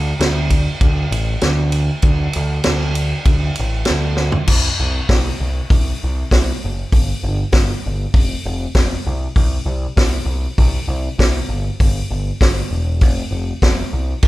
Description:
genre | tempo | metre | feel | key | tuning
garage rock duo or trio | 98 BPM | 4/4 | straight | D minor | A4 = 440 Hz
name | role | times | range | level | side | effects
growling picked electric bass | bass | 0.0-14.3 s | E1 to D2 | -19 LUFS | equal | overdrive, tube saturation
vintage drum kit | drums | 0.2-14.3 s | crash cymbal, hi-hat, kick drum, ride cymbal, snare drum, toms | -16 LUFS | equal | none
room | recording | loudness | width
light reverb | band playing live in one room | -15 LUFS | side -17 dB against mid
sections
0.0-4.5 A section; 4.5-14.3 B section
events
drum fill 4.2-4.5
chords
none

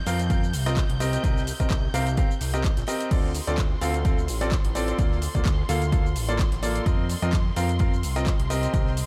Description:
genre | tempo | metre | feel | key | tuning
piano house | 128 BPM | 4/4 | swing 55% on 16ths | C dorian | A4 = 440 Hz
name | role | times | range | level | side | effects
dark studio violin section | sustained chords | 0.0-9.1 s | C6 to G6 | -41 LUFS | equal | sidechain pumping
clear baby grand piano | riff | 0.1-8.9 s | Bb3 to F5 | -31 LUFS | equal | sidechain pumping, diffuse ambient delay
fat analog bass | bass | 0.1-9.0 s | A1 to F2 | -29 LUFS | equal | sidechain pumping
damped 70s drum kit | drums | 0.1-9.1 s | ride cymbal, snare drum | -50 LUFS | equal | none
house drum kit | drums | 0.1-9.1 s | crash cymbal, handclaps, hi-hat, shaker | -38 LUFS | equal | overdrive
electronic kick drum | drums | 0.3-8.8 s | none | -26 LUFS | equal | none
room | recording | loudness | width
light reverb, small room ambience | none | -24 LUFS | mono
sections
0.0-9.1 A section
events
none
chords
0.0 Fsus4; 1.0 Cm7; 3.1 Dm7; 5.0 Bbmaj7/D; 6.9 F7sus4; 8.5 Cm7

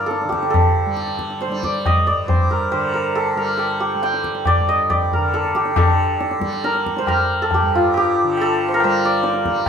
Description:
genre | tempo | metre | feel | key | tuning
indian classical, Hindustani | 138 BPM | 3/4 | straight | G raga darbari | A4 = 440 Hz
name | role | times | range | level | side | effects
santur | melody | 0.0-9.7 s | F4 to G5 | -18 LUFS | equal | none
tanpura | drone | 0.0-9.7 s | G2 to G3 | -26 LUFS | right 2 dB | none
tabla | percussion | 0.0-9.7 s | none | -22 LUFS | left 1 dB | none
room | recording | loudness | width
moderate studio reverb, RT60 0.6 s | minimal, uncompressed stereo recording | -16 LUFS | side -7 dB against mid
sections
0.0-5.8 A section; 5.8-9.7 B section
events
none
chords
none

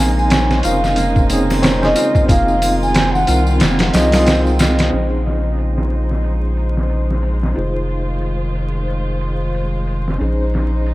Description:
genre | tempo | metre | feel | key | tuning
trip hop | 91 BPM | 4/4 | swing 58% on 16ths | Bb minor | A4 = 439 Hz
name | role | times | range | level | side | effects
mellow baroque flute | melody | 0.0-4.4 s | Eb5 to Ab5 | -20 LUFS | equal | tape echo
tine electric piano | accompaniment | 0.0-10.9 s | C4 to C5 | -22 LUFS | equal | tremolo, tape echo
dark chamber string section | sustained chords | 0.0-10.9 s | Db3 to C5 | -25 LUFS | equal | low-pass filter
concert harp | arpeggios | 0.0-7.3 s | Bb3 to F4 | -25 LUFS | right 1 dB | ping-pong delay
round analog bass | bass | 0.0-10.9 s | F1 to C2 | -18 LUFS | equal | none
tambourine and triangle | percussion | 0.2-4.9 s | none | -31 LUFS | left 4 dB | none
trip hop sampler-style drum kit | drums | 0.3-10.9 s | hi-hat, kick drum, snare drum | -18 LUFS | equal | low-pass filter on hats, low-pass filter on snare, low-pass filter on kick
room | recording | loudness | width
light reverb | vinyl crackle | -14 LUFS | side -18 dB against mid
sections
0.0-4.9 A section; 4.9-10.9 B section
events
none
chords
0.0 Bbm11; 7.6 Fm7; 10.2 Bbm11

